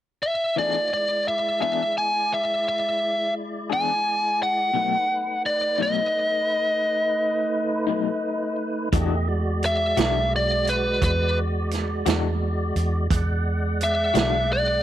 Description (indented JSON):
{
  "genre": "slow blues",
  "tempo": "57 BPM (dotted quarters)",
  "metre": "12/8",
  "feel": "straight",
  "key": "E mixolydian",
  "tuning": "A4 = 445 Hz",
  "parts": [
    { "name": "biting lead guitar", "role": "melody", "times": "0.2-14.8 s", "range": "B4 to G#5", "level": "-22 LUFS", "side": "equal", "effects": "overdrive" },
    { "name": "electric guitar through a small old amp", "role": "accompaniment", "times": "0.6-14.4 s", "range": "B2 to G#4", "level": "-29 LUFS", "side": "left 12 dB", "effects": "tremolo" },
    { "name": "tonewheel organ", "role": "sustained chords", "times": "0.6-14.8 s", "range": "G#3 to F#5", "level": "-29 LUFS", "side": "right 1 dB", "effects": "slow rotary speaker, chorus vibrato" },
    { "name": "vintage muted fingered electric bass", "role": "bass", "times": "8.9-14.8 s", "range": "B1 to E2", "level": "-25 LUFS", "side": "right 1 dB", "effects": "none" },
    { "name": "vintage drum kit", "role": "drums", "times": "8.9-14.3 s", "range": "hi-hat, kick drum, snare drum", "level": "-26 LUFS", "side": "right 4 dB", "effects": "none" }
  ],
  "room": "light reverb, small room ambience",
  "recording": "1960s-style stereo",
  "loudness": "-21 LUFS",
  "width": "side -12 dB against mid",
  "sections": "0.6-8.9 A section; 8.9-14.8 B section",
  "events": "lead electric guitar solo 8.9-14.8",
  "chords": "0.0 N.C.; 0.6 E7; 4.7 B7; 8.9 E9",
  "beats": "| 0.56 1.61 2.65 3.70 | 4.75 5.79 6.84 7.88 | 8.93 9.97 11.02 12.06 | 13.10 14.15"
}